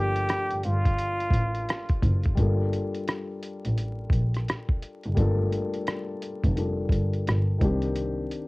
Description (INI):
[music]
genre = lo-fi hip hop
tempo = 86 BPM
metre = 4/4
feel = swing 63% on 16ths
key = G minor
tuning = A4 = 439 Hz
[part]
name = trumpet with plunger mute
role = melody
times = 0.0-2.0 s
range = F4 to G4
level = -29 LUFS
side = equal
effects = low-pass filter
[part]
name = felt-muted upright piano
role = accompaniment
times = 0.0-8.5 s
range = Eb3 to A4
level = -32 LUFS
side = left 3 dB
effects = cassette tape, low-pass filter
[part]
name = warm double bass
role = bass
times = 0.0-8.2 s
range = F1 to C2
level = -26 LUFS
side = equal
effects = none
[part]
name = lo-fi sampler-style drum kit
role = drums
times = 0.2-8.5 s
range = hi-hat, kick drum, rim click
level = -26 LUFS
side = equal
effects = cassette tape
[sound]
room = little or no reverb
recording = home recording on cassette, vinyl crackle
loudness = -24 LUFS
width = side -24 dB against mid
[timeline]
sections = 0.0-2.4 A section; 2.4-8.5 B section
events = none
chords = 0.0 Gm9; 7.6 Cm9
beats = 0.29 0.98 1.68 | 2.38 3.08 3.77 4.47 | 5.17 5.87 6.57 7.26 | 7.96